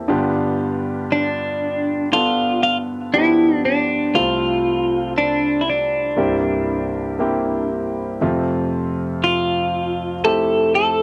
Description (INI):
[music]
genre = pop ballad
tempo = 59 BPM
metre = 4/4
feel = straight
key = F major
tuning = A4 = 440 Hz
[part]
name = clear concert grand piano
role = accompaniment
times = 0.0-11.0 s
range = C2 to E5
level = -23 LUFS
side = equal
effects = none
[part]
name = twelve-string electric guitar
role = melody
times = 1.1-11.0 s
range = D4 to A4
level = -20 LUFS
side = equal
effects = cassette tape
[sound]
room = moderate studio ambience, RT60 0.5 s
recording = home recording on cassette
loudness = -19 LUFS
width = mono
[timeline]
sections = 0.0-11.0 A section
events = none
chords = 0.1 G7; 4.2 F/C; 6.2 C7; 8.2 Fmaj7